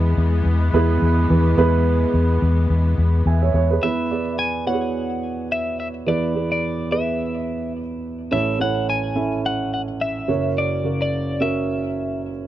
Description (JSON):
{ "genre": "pop", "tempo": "107 BPM", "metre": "4/4", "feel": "swing 56% on 16ths", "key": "E mixolydian", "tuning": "A4 = 440 Hz", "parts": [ { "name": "warm concert grand piano", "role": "accompaniment", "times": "0.0-12.5 s", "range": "F#1 to G#5", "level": "-22 LUFS", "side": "right 3 dB", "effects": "none" }, { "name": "clear symphonic string section", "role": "sustained chords", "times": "0.0-3.8 s", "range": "E3 to B3", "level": "-27 LUFS", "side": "left 4 dB", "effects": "none" }, { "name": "vintage muted fingered electric bass", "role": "bass", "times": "0.0-3.8 s", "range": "E2", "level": "-17 LUFS", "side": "left 1 dB", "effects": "none" }, { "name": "twelve-string electric guitar", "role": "melody", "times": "3.8-12.2 s", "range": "D5 to G#5", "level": "-25 LUFS", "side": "left 3 dB", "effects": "tape echo" } ], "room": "little or no reverb", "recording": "dry, close 1970s-style studio recording", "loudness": "-18 LUFS", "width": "side -13 dB against mid", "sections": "0.0-3.8 A section; 3.8-12.5 B section", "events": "none", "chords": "0.0 E; 8.3 A; 10.3 F#", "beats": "0.46 1.02 | 1.58 2.14 2.70 3.27 | 3.83 4.39 4.95 5.51 | 6.07 6.63 7.20 7.76 | 8.32 8.88 9.44 10.00 | 10.56 11.12 11.69 12.25" }